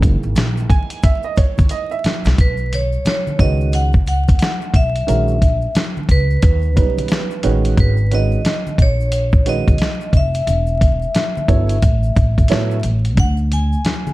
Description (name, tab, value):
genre	hip hop, jazz-hop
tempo	89 BPM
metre	4/4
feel	swing 62% on 16ths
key	B major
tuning	A4 = 440 Hz
part	dark upright piano	accompaniment	0.0-12.8 s	D#3 to G#5	-23 LUFS	right 6 dB	plate reverb
part	upright bass	bass	0.0-13.7 s	E1 to A2	-18 LUFS	equal	none
part	dusty soul sampler-style drum kit	drums	0.0-14.0 s	hi-hat, kick drum, snare drum	-16 LUFS	equal	none
part	congas and maracas	percussion	0.0-14.1 s	none	-28 LUFS	equal	none
part	vibraphone with hard mallets	melody	2.4-14.1 s	B4 to G#5	-23 LUFS	equal	plate reverb
room	light reverb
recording	dark, warm production, vinyl crackle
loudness	-14 LUFS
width	side -18 dB against mid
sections	0.0-2.4 A section; 2.4-14.1 B section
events	upright piano solo 0.0-2.4; drum fill 1.7-2.4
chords	0.0 F#13 (rootless); 2.4 B69; 5.1 A#m7b5; 6.4 D#7b13; 7.8 G#m9; 10.5 Em; 11.8 Aadd9; 13.2 N.C.